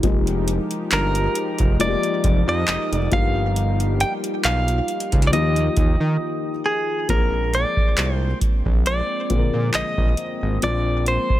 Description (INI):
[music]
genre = contemporary R&B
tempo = 68 BPM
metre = 4/4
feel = swing 54% on 16ths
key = unclear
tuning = A4 = 440 Hz
[part]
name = felt-muted upright piano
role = accompaniment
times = 0.0-11.4 s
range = D3 to Bb4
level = -27 LUFS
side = left 7 dB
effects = none
[part]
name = warm analog pad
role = sustained chords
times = 0.0-11.4 s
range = Eb3 to G5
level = -29 LUFS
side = right 1 dB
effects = wide subtle chorus
[part]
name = fat analog bass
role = bass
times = 0.0-11.2 s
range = F1 to Eb3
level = -22 LUFS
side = equal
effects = none
[part]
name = booming analog drum machine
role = drums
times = 0.0-11.4 s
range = handclaps, hi-hat, kick drum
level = -20 LUFS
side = equal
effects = none
[part]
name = direct-recorded clean electric guitar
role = melody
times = 0.9-11.4 s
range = Ab4 to G5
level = -24 LUFS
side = equal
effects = digital delay
[sound]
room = little or no reverb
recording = none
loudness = -18 LUFS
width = side -14 dB against mid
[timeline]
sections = 0.0-7.1 A section; 7.1-11.4 B section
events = break 6.2-7.1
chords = 0.0 Fm11; 3.1 G7alt; 5.3 Ebadd9; 7.1 Bb9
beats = | 0.03 0.91 1.80 2.68 | 3.56 4.44 5.33 6.21 | 7.09 7.97 8.86 9.74 | 10.62